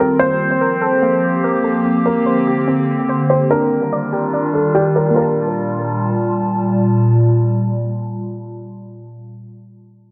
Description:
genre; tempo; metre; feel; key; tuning
hip hop; 145 BPM; 4/4; half-time; G minor; A4 = 440 Hz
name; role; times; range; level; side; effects
felt-muted upright piano; melody; 0.0-6.4 s; G4 to C5; -20 LUFS; equal; low-pass filter, digital delay
warbly tape-like pad; sustained chords; 0.0-9.2 s; Bb2 to A5; -19 LUFS; equal; chorus, built-in reverb, phaser, low-pass filter
warbly dusty pluck; arpeggios; 0.0-9.2 s; A3 to A5; -24 LUFS; equal; chorus, low-pass filter, digital delay
room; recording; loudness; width
moderate small room reverb, RT60 0.5 s; dense, heavily limited modern master; -16 LUFS; mono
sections
0.0-5.2 A section; 5.2-8.5 B section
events
filter sweep 0.0-5.2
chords
0.2 Gm9; 1.9 Bb69; 3.5 Ebmaj9; 5.2 Gm9

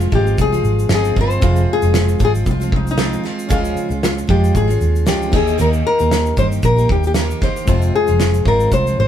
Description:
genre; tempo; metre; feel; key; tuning
acoustic pop; 115 BPM; 4/4; swing 55% on 16ths; F minor; A4 = 445 Hz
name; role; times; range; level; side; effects
nylon-string guitar; melody; 0.0-9.1 s; Eb4 to C5; -19 LUFS; left 4 dB; none
bright reed electric piano; accompaniment; 0.0-9.1 s; Ab3 to F5; -30 LUFS; left 4 dB; medium tremolo
picked steel-string acoustic guitar; accompaniment; 0.0-9.1 s; F2 to G4; -23 LUFS; right 4 dB; none
vintage muted fingered electric bass; bass; 0.0-9.1 s; F1 to G2; -17 LUFS; equal; none
loose indie drum kit; drums; 0.0-9.0 s; crash cymbal, kick drum, shaker, snare drum; -20 LUFS; equal; none
room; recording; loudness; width
light reverb; band playing live in one room; -13 LUFS; side -10 dB against mid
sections
0.0-9.1 A section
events
none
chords
0.0 Fm; 3.5 Db; 5.3 Eb; 7.7 Fm

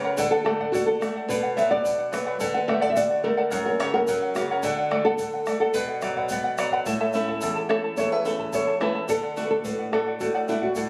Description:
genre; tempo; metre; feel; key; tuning
andean folk, Andean ensemble; 108 BPM; 2/4; straight; unclear; A4 = 445 Hz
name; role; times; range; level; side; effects
nylon-string guitar; melody; 0.0-10.9 s; E4 to E5; -27 LUFS; equal; none
charango; accompaniment; 0.0-10.9 s; E4 to A5; -29 LUFS; equal; none
flamenco guitar; accompaniment; 0.0-10.9 s; E2 to F#4; -33 LUFS; equal; none
bombo; percussion; 0.2-10.9 s; none; -40 LUFS; equal; none
egg shaker; percussion; 0.2-10.9 s; none; -43 LUFS; equal; none
room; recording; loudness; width
light reverb; recorded on a phone in the room, club reverb, compression; -25 LUFS; mono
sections
0.0-6.9 A section; 6.9-10.9 B section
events
none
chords
0.2 D; 1.3 Bm; 2.4 D; 3.5 F#; 4.6 D; 5.8 Bm; 6.9 A; 9.1 D

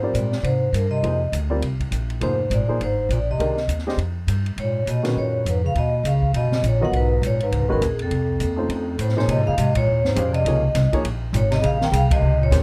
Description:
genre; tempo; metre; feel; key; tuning
modal jazz; 204 BPM; 4/4; swing 60% on 8ths; Bb dorian from 9.3 s; A4 = 437 Hz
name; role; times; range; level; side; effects
vibraphone with medium hard mallets; melody; 0.0-12.6 s; Ab4 to G5; -27 LUFS; equal; none
breathy bass clarinet; second line; 0.0-12.6 s; Eb2 to Eb3; -26 LUFS; equal; none
warm upright piano; accompaniment; 0.0-12.6 s; Eb3 to F5; -29 LUFS; equal; none
upright bass; bass; 0.0-12.6 s; F1 to C3; -25 LUFS; equal; none
open jazz drum kit; drums; 0.1-12.6 s; hi-hat, kick drum, ride cymbal, snare drum; -32 LUFS; equal; none
room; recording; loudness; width
light reverb; close, detailed microphones; -21 LUFS; mono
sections
0.0-9.3 A section; 9.3-12.6 B section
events
band accent 12.1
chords
0.0 Fm11; 4.6 Abm11; 8.1 F7b13; 9.3 Bbm11

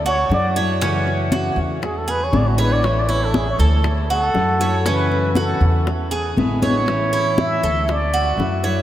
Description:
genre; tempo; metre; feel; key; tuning
latin, Cuban son and guajira; 119 BPM; 4/4; straight; A major; A4 = 441 Hz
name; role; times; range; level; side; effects
trumpet with plunger mute; melody; 0.0-8.4 s; F#4 to E5; -22 LUFS; right 1 dB; none
Cuban tres; arpeggios; 0.0-8.8 s; C#4 to C#5; -23 LUFS; right 3 dB; tape echo
upright bass; bass; 0.0-8.8 s; A1 to F#2; -21 LUFS; equal; none
congas; percussion; 0.0-8.6 s; none; -27 LUFS; left 1 dB; none
fingerpicked steel-string acoustic guitar; accompaniment; 0.3-8.8 s; C#3 to F#4; -24 LUFS; left 3 dB; none
bongos; percussion; 0.3-8.8 s; none; -30 LUFS; left 4 dB; none
room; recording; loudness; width
wet cathedral reverb, RT60 5.5 s; in a vast, echoing space; -16 LUFS; side -12 dB against mid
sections
0.0-8.8 A section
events
muted trumpet solo 0.0-8.8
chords
0.0 Dadd9; 0.8 F#m7; 1.8 E7; 2.8 A; 3.8 Dadd9; 4.9 F#m7; 5.9 E7; 6.9 A; 7.9 Dadd9

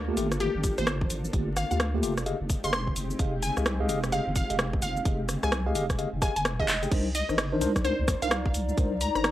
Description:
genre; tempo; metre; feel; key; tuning
UK garage, two-step garage; 129 BPM; 4/4; swing 62% on 16ths; C minor; A4 = 444 Hz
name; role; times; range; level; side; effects
soft string machine; sustained chords; 0.0-6.9 s; Ab3 to A4; -38 LUFS; equal; ensemble chorus, sidechain pumping
deep soft wobble bass; bass; 0.0-9.3 s; F1 to D2; -30 LUFS; equal; chorus
mellow tine electric piano; stabs; 0.1-9.2 s; A3 to G5; -31 LUFS; left 1 dB; medium stereo tremolo, tape echo
punchy analog drum machine; drums; 0.2-9.3 s; crash cymbal, handclaps, hi-hat, rim click, shaker; -31 LUFS; equal; overdrive
glassy wavetable pluck; melody; 0.4-9.2 s; G4 to C6; -32 LUFS; equal; chorus, tape echo
electronic kick drum; drums; 0.6-8.9 s; none; -28 LUFS; equal; none
warbly tape-like pad; texture; 7.4-9.3 s; Eb4 to Bb5; -35 LUFS; left 1 dB; chorus, built-in reverb, sidechain pumping
room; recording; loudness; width
light reverb; dry, gritty hardware recording, transformer saturation, vinyl crackle; -25 LUFS; side -14 dB against mid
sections
0.0-6.9 A section; 6.9-9.3 B section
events
drum fill 6.7; band accent 6.7; drop 6.9-9.3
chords
0.0 Gm9; 2.3 Fm9; 6.9 Cm9

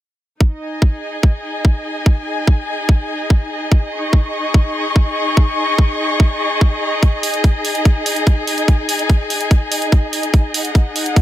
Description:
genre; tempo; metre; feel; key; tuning
psychedelic trance; 145 BPM; 4/4; straight; unclear; A4 = 439 Hz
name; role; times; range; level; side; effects
electronic kick drum; drums; 0.4-11.2 s; none; -11 LUFS; equal; overdrive
dark chamber string section; texture; 0.4-11.2 s; D#4 to C#6; -20 LUFS; left 1 dB; sidechain pumping
electronic hi-hat; drums; 7.0-11.2 s; none; -22 LUFS; right 3 dB; none
room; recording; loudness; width
little or no reverb; none; -14 LUFS; side -13 dB against mid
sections
0.4-11.2 A section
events
none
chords
0.4 G#5

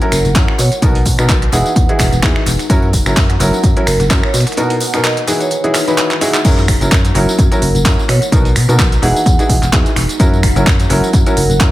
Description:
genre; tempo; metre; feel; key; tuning
piano house; 128 BPM; 4/4; swing 55% on 16ths; F# mixolydian; A4 = 438 Hz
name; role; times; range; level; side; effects
clear upright piano; riff; 0.0-11.7 s; B2 to B4; -18 LUFS; equal; sidechain pumping, analog delay
garage drum kit; drums; 0.0-11.7 s; crash cymbal, finger snaps, handclaps, hi-hat, tambourine; -18 LUFS; equal; analog delay
deep dark ambient pad; texture; 0.0-11.7 s; D#4 to A#5; -25 LUFS; left 1 dB; chorus, built-in reverb, sidechain pumping
vibraphone with medium hard mallets; melody; 0.1-11.5 s; A#4 to F#5; -21 LUFS; right 2 dB; analog delay
solid FM bass; bass; 0.1-11.7 s; E1 to B2; -15 LUFS; equal; sidechain pumping
dusty soul sampler-style drum kit; drums; 0.1-11.7 s; hi-hat, shaker, snare drum; -29 LUFS; right 2 dB; none
tambourine; percussion; 0.1-6.4 s; none; -32 LUFS; left 5 dB; none
electronic kick drum; drums; 0.4-11.7 s; none; -13 LUFS; equal; none
room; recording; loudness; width
light reverb; echo-heavy mix; -10 LUFS; side -16 dB against mid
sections
0.0-6.4 A section; 6.4-11.7 B section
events
drum fill 6.1-6.4; drop 6.4-11.7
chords
0.0 F#7; 0.6 Bmaj7; 1.5 Emaj9; 2.7 F#7; 4.3 Bmaj7; 5.3 Emaj9; 6.4 F#7; 8.1 Bmaj7; 9.0 Emaj9; 10.2 F#7

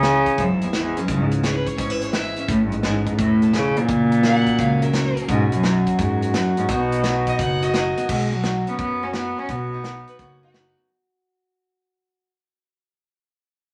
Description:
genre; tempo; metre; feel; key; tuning
honky-tonk and classic country; 171 BPM; 4/4; swing 66% on 8ths; B major; A4 = 440 Hz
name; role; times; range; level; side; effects
warm cello; melody; 0.0-10.5 s; E2 to C#4; -23 LUFS; equal; none
picked steel-string acoustic guitar; accompaniment; 0.0-12.3 s; F#2 to A#4; -28 LUFS; equal; none
upright bass; bass; 0.0-10.7 s; E1 to F#2; -29 LUFS; equal; none
natural country drum kit; drums; 0.0-10.7 s; crash cymbal, hi-hat, kick drum, snare drum; -30 LUFS; equal; none
bright fiddle; second line; 1.4-10.8 s; F#4 to F#5; -30 LUFS; equal; none
room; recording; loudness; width
wet studio reverb, RT60 0.8 s; none; -21 LUFS; mono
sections
0.0-8.1 A section; 8.1-10.9 B section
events
fade-out 8.1-10.9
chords
0.0 C#m; 2.5 A5; 3.9 F#; 5.3 Bsus2; 6.7 B; 8.1 Bsus2; 9.5 B

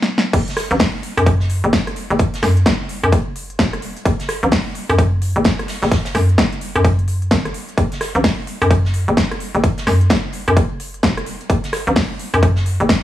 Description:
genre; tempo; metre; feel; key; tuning
bass house; 129 BPM; 4/4; swing 61% on 16ths; F# minor; A4 = 438 Hz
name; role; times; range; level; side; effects
big-room dance drum kit; drums; 0.0-13.0 s; crash cymbal, hi-hat, rim click, snare drum; -21 LUFS; equal; overdrive
hollow knocking FM bass; bass; 0.3-13.0 s; E1 to F#2; -18 LUFS; equal; overdrive, sidechain pumping
big rock drum kit; drums; 0.3-13.0 s; hi-hat, snare drum; -31 LUFS; right 1 dB; sidechain pumping on hats, high-pass filter on hats, low-pass filter on hats, high-pass filter on snare, low-pass filter on snare, high-pass filter on room, low-pass filter on room
electronic kick drum; drums; 0.3-13.0 s; none; -18 LUFS; equal; overdrive
room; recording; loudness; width
small room ambience; none; -15 LUFS; side -13 dB against mid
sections
0.3-13.0 A section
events
drum fill 0.0-0.3; stop 0.0-0.3; drop 0.3-13.0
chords
none

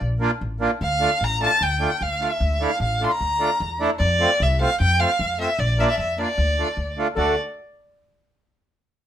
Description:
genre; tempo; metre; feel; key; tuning
klezmer; 151 BPM; 4/4; straight; D minor; A4 = 440 Hz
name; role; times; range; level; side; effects
upright bass; bass; 0.0-7.4 s; A1 to F2; -24 LUFS; equal; none
accordion; accompaniment; 0.2-7.4 s; A3 to F#4; -24 LUFS; right 2 dB; none
dark violin; melody; 0.8-7.4 s; D5 to C6; -22 LUFS; equal; none
bright trombone; second line; 7.2-7.3 s; A4; -24 LUFS; left 2 dB; none
room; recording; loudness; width
moderate studio reverb, RT60 0.6 s; minimal, uncompressed stereo recording; -19 LUFS; side -10 dB against mid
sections
0.0-7.2 A section; 7.2-8.7 B section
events
none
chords
0.0 Bb; 0.8 Dm; 4.0 F; 5.6 Bb; 6.4 Dm; 7.2 D

